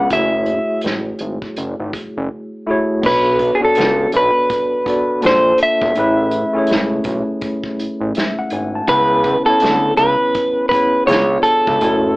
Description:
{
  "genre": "R&B, neo-soul",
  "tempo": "82 BPM",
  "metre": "4/4",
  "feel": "swing 59% on 16ths",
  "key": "B dorian",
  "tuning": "A4 = 437 Hz",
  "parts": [
    { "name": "electric guitar at the edge of break-up", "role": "melody", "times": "0.0-12.2 s", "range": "G#4 to F#5", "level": "-14 LUFS", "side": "equal", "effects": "none" },
    { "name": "mellow tine electric piano", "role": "accompaniment", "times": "0.0-12.2 s", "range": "E#3 to A5", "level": "-20 LUFS", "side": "equal", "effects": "medium tremolo" },
    { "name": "fat analog bass", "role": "bass", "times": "0.0-12.2 s", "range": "E1 to D2", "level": "-21 LUFS", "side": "equal", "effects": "none" },
    { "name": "unplugged drum kit", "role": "drums", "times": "0.1-12.0 s", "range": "crash cymbal, hi-hat, kick drum, snare drum", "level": "-24 LUFS", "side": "equal", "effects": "none" }
  ],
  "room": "moderate studio reverb, RT60 0.5 s",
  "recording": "band playing live in one room, AM radio sound",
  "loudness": "-14 LUFS",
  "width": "side -21 dB against mid",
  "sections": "0.0-3.0 A section; 3.0-12.2 B section",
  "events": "silent gap 2.3-3.0",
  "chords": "0.1 F#m9; 3.0 Bm7; 5.2 A#maj9; 6.0 Amaj9; 8.9 C#m7; 11.1 C#7b9"
}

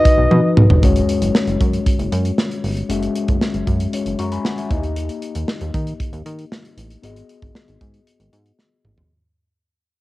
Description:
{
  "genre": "1980s-style pop",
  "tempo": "116 BPM",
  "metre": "4/4",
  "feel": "straight",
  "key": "unclear",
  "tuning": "A4 = 441 Hz",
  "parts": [
    { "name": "warm flugelhorn", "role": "melody", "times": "0.0-0.5 s", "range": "D#5", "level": "-18 LUFS", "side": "right 1 dB", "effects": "cassette tape, tape echo" },
    { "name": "mellow tine electric piano", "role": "accompaniment", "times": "0.0-9.1 s", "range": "G#3 to C#6", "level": "-22 LUFS", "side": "left 5 dB", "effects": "medium stereo tremolo, cassette tape" },
    { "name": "modern studio drum kit", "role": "drums", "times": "0.1-9.1 s", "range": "hi-hat, kick drum, snare drum, toms", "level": "-18 LUFS", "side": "right 1 dB", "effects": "none" },
    { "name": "chorused synth bass", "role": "bass", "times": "0.2-9.0 s", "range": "F#1 to D#3", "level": "-22 LUFS", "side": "equal", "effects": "none" }
  ],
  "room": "light reverb, studio ambience",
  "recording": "home recording on cassette",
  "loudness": "-16 LUFS",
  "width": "side -18 dB against mid",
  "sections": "0.8-9.1 A section",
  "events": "drum fill 0.3-0.8, 8.6-9.1; fade-out 0.8-9.1",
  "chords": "0.0 B; 0.8 F#sus2; 4.7 D#; 7.0 G#m7"
}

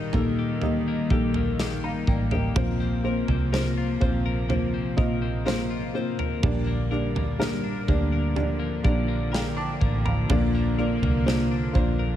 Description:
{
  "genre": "pop ballad",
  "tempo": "62 BPM",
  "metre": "4/4",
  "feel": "straight",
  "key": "unclear",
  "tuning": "A4 = 440 Hz",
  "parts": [
    { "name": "felt-muted upright piano", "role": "accompaniment", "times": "0.0-12.2 s", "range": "Bb2 to D6", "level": "-28 LUFS", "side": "equal", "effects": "none" },
    { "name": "warm studio string section", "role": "sustained chords", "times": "0.0-12.2 s", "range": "C3 to Bb3", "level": "-30 LUFS", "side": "left 1 dB", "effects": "stereo widening" },
    { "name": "twelve-string electric guitar", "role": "arpeggios", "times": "0.0-12.2 s", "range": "Bb2 to Bb4", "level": "-34 LUFS", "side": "left 9 dB", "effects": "none" },
    { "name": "vintage muted fingered electric bass", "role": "bass", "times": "0.0-12.2 s", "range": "A1 to Bb2", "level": "-27 LUFS", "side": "equal", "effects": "none" },
    { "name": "modern studio drum kit", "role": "drums", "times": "0.1-12.0 s", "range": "kick drum, snare drum, toms", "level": "-28 LUFS", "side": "right 1 dB", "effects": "none" }
  ],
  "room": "small room ambience",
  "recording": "none",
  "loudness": "-22 LUFS",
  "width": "side -11 dB against mid",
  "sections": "0.0-12.2 A section",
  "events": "felt piano fill 8.8-10.3",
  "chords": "0.0 Eb/Bb; 2.6 Fsus4/Bb; 6.4 Gm/Bb; 10.3 Bb"
}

